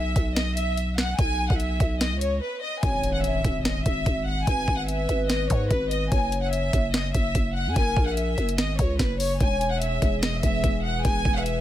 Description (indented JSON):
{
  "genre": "hip hop, trap",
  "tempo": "146 BPM",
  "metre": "4/4",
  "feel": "half-time",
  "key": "G# minor",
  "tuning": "A4 = 440 Hz",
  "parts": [
    { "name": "rich studio violin section", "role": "melody", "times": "0.0-11.6 s", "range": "B4 to G#5", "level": "-28 LUFS", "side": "equal", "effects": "digital delay" },
    { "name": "growling 808-style bass", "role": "bass", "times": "0.0-11.6 s", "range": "E1 to G#2", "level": "-27 LUFS", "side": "equal", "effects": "none" },
    { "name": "trap drum kit", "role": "drums", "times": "0.2-11.6 s", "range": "hi-hat, kick drum, snare drum", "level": "-25 LUFS", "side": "equal", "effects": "none" },
    { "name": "hollow clarinet-like synth lead", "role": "second line", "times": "2.8-11.6 s", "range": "A#4 to C#5", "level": "-32 LUFS", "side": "left 3 dB", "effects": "chorus, digital delay" },
    { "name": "impact", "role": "sound effects", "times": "2.8-4.5 s", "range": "none", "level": "-35 LUFS", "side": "right 1 dB", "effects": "none" },
    { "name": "dark analog pad", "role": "sustained chords", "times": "9.8-11.6 s", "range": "E3 to G#4", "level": "-33 LUFS", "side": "right 2 dB", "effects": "chorus, phaser" }
  ],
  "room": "little or no reverb",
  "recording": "none",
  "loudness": "-22 LUFS",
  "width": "side -12 dB against mid",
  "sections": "0.0-2.8 A section; 2.8-11.6 B section",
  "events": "break 2.4-2.8; impact 2.8-4.5",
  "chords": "0.0 Bsus4; 2.8 G#m; 6.1 F#; 9.4 E"
}